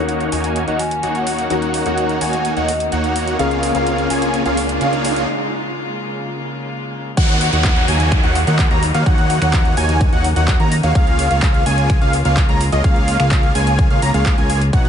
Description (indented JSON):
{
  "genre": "EDM, festival progressive house",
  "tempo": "127 BPM",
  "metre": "4/4",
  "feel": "straight",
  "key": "Eb minor",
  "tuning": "A4 = 441 Hz",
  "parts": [
    { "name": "warm concert grand piano", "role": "accompaniment", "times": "0.0-7.2 s", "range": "Db3 to Bb4", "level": "-24 LUFS", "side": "left 5 dB", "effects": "sidechain pumping, ping-pong delay" },
    { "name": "rich chamber string section", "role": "sustained chords", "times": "0.0-14.9 s", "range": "Db3 to Gb4", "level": "-28 LUFS", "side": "left 2 dB", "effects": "sidechain pumping" },
    { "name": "wide unison lead", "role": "arpeggios", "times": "0.0-14.9 s", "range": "Eb5 to Bb5", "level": "-23 LUFS", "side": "equal", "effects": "analog chorus, sidechain pumping, ping-pong delay" },
    { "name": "supersaw chords", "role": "riff", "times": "0.0-14.9 s", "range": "Bb3 to Bb5", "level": "-22 LUFS", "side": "right 1 dB", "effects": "sidechain pumping, low-pass filter, ping-pong delay" },
    { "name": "fat analog bass", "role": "bass", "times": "0.0-14.9 s", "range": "B1 to Eb2", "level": "-20 LUFS", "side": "equal", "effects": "sidechain pumping" },
    { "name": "riser and downlifter", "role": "sound effects", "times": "1.0-11.0 s", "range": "none", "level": "-26 LUFS", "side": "right 1 dB", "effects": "none" },
    { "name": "big-room dance drum kit", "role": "drums", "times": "0.1-14.9 s", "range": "crash cymbal, finger snaps, handclaps, hi-hat", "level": "-26 LUFS", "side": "right 1 dB", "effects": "overdrive" },
    { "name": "vibraphone with soft mallets", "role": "melody", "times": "0.7-2.8 s", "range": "Eb5 to Ab5", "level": "-27 LUFS", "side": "equal", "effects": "ping-pong delay" },
    { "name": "electronic kick drum", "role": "drums", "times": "7.2-14.8 s", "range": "none", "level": "-15 LUFS", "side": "equal", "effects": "overdrive" }
  ],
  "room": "light reverb, digital ambience",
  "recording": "nothing above 10.7 kHz",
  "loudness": "-14 LUFS",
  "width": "side -8 dB against mid",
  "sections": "0.0-7.2 A section; 7.2-14.9 B section",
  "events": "build-up 0.0-7.2; filter sweep on analog synth lead 0.0-7.2; riser 1.0-5.3; break 5.3-7.2; drop 7.2-14.9",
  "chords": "0.0 Ebm7; 3.4 Db6; 7.2 Ebm7; 11.0 Db6",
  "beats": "0.09 0.56 1.03 | 1.50 1.98 2.45 2.92 | 3.39 3.87 4.34 4.81 | 5.28 5.76 6.23 6.70 | 7.17 7.65 8.12 8.59 | 9.06 9.54 10.01 10.48 | 10.95 11.43 11.90 12.37 | 12.84 13.31 13.79 14.26 | 14.73"
}